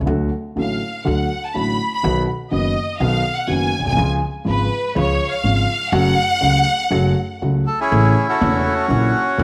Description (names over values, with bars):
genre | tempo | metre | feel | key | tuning
tango | 123 BPM | 4/4 | rubato | F# harmonic minor | A4 = 441 Hz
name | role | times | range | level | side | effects
dark concert grand piano | accompaniment | 0.0-9.4 s | E1 to F#4 | -22 LUFS | equal | none
upright bass | bass | 0.0-9.4 s | E1 to D2 | -25 LUFS | equal | none
bright studio violin section | second line | 0.6-7.4 s | B4 to B5 | -23 LUFS | equal | none
bandoneon | melody | 7.7-9.4 s | A3 to A4 | -20 LUFS | equal | tape echo
room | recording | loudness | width
moderate echo chamber reverb, RT60 1.6 s, studio reverb | none | -19 LUFS | mono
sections
0.0-7.9 A section; 7.9-9.4 B section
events
violin section solo 0.0-7.9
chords
0.1 D; 2.0 B; 4.0 C#; 5.9 F#m; 7.9 A; 8.9 F#7/A#